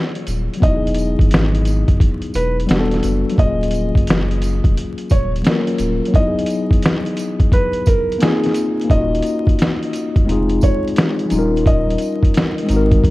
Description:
lo-fi hip hop; 87 BPM; 4/4; swing 65% on 16ths; Eb phrygian, Eb dorian from 8.9 s; A4 = 439 Hz
mellow tine electric piano; accompaniment; 0.0-13.1 s; F3 to Bb4; -20 LUFS; left 2 dB; medium stereo tremolo, cassette tape
trip hop sampler-style drum kit; drums; 0.2-13.1 s; hi-hat, kick drum, snare drum; -17 LUFS; equal; vintage 12-bit sampler grit
warm sub bass; bass; 0.3-13.1 s; Eb1 to G#1; -20 LUFS; equal
tambourine; percussion; 0.3-12.9 s; -39 LUFS; right 4 dB
felt-muted upright piano; melody; 0.6-13.0 s; Ab4 to D#5; -24 LUFS; right 1 dB
light reverb, digital ambience; dark, warm production, vinyl crackle; -14 LUFS; side -18 dB against mid
0.0-8.9 A section; 8.9-13.1 B section
0.0 Ebm11; 0.6 Emaj9; 2.7 Em11; 3.4 Ebm11; 6.1 Emaj9; 8.2 Bb9sus4; 8.9 Ebm7; 10.3 Fm7; 11.3 Eb7
| 0.62 1.31 2.00 2.69 | 3.38 4.07 4.76 5.45 | 6.14 6.83 7.52 8.21 | 8.90 9.59 10.28 10.97 | 11.66 12.35 13.04

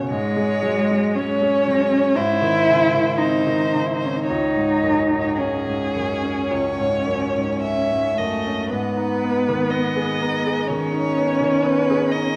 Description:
classical, slow romantic movement for piano trio; 53-64 BPM; 4/4; rubato; C# minor, G# minor from 8.7 s; A4 = 442 Hz
rich violin; melody; 0.0-12.4 s; G#4 to E5; -27 LUFS; equal
clear grand piano; accompaniment; 0.0-12.4 s; C#2 to G#4; -26 LUFS; equal
rich cello; second line; 0.1-12.4 s; G#3 to E4; -23 LUFS; equal
moderate concert hall reverb, RT60 2.4 s; worn, warbling old tape, cassette tape, warbly pitch drift; -20 LUFS; mono
0.0-8.7 A section; 8.7-12.4 B section
0.1 C#5/G#; 2.2 G#; 4.3 C#5; 8.7 G#m
| 0.10 1.15 2.15 3.18 | 4.26 5.38 6.50 7.62 | 8.70 9.70 10.67 11.63

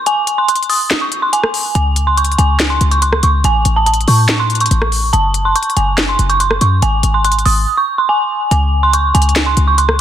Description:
hip hop, trap; 142 BPM; 4/4; half-time; A4 = 442 Hz
dark detuned synth bell; melody; 0.0-10.0 s; G#5 to D#6; -14 LUFS; right 2 dB; chorus, low-pass filter, ping-pong delay
trap drum kit; drums; 0.1-10.0 s; handclaps, hi-hat, rim click, snare drum; -17 LUFS; left 1 dB; soft clipping on snare
short 808-style bass; bass; 1.8-10.0 s; F#1 to A2; -14 LUFS; left 1 dB
light reverb; dense, heavily limited modern master; -11 LUFS; side -10 dB against mid
0.0-8.5 A section; 8.5-10.0 B section
break 0.0-1.8; drums muted 7.7-8.5
0.0 N.C.; 1.8 G#add11/C#; 3.4 A; 5.1 F#5; 6.8 G#; 8.5 G#add11/C#
| 0.06 0.48 0.91 1.33 | 1.75 2.17 2.60 3.02 | 3.44 3.87 4.29 4.71 | 5.13 5.56 5.98 6.40 | 6.82 7.25 7.67 8.09 | 8.51 8.94 9.36 9.78

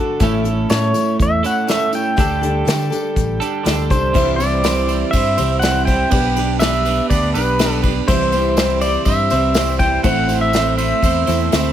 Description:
folk rock and heartland rock; 122 BPM; 4/4; straight; A4 = 441 Hz
picked steel-string acoustic guitar; accompaniment; 0.0-11.7 s; A2 to C5; -23 LUFS; left 7 dB
twelve-string electric guitar; riff; 0.0-11.7 s; A2 to C5; -21 LUFS; right 8 dB; spring reverb
fingered electric bass; bass; 0.2-11.7 s; A1 to D3; -21 LUFS; equal
soft brush drum kit; drums; 0.2-11.6 s; crash cymbal, hi-hat, kick drum, ride cymbal, snare drum; -20 LUFS; equal
tambourine; percussion; 0.2-11.6 s; -35 LUFS; left 9 dB
pedal steel guitar; melody; 0.7-11.7 s; B4 to G5; -20 LUFS; equal
light reverb, small room ambience; -14 LUFS; side -10 dB against mid
0.0-4.2 A section; 4.2-11.7 B section
0.2 A; 2.2 Dsus4; 4.2 C; 6.1 G/B; 8.1 C; 10.1 Am
| 0.20 0.70 1.20 1.69 | 2.18 2.68 3.17 3.66 | 4.16 4.65 5.14 5.63 | 6.12 6.62 7.11 7.60 | 8.09 8.58 9.07 9.56 | 10.05 10.54 11.03 11.52

